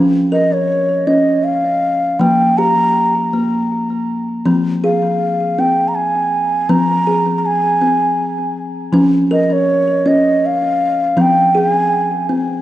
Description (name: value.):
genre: world meditative, meditative tuned percussion.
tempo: 80 BPM.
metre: 3/4.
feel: swing 55% on 16ths.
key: F minor.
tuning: A4 = 440 Hz.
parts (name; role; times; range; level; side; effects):
kalimba; arpeggios; 0.0-12.6 s; F3 to Bb4; -16 LUFS; left 1 dB; ping-pong delay.
mellow hollow bansuri; melody; 0.3-12.3 s; Db5 to Bb5; -15 LUFS; right 1 dB; ping-pong delay.
room: wet concert hall reverb, RT60 2.1 s.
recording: worn, warbling old tape, cassette tape, warbly pitch drift.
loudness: -12 LUFS.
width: side -14 dB against mid.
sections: 0.0-12.6 A section.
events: none.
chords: 0.0 Bbm/F; 2.2 Fsus24; 4.4 Fm; 8.9 Bbm/F; 11.2 Fm.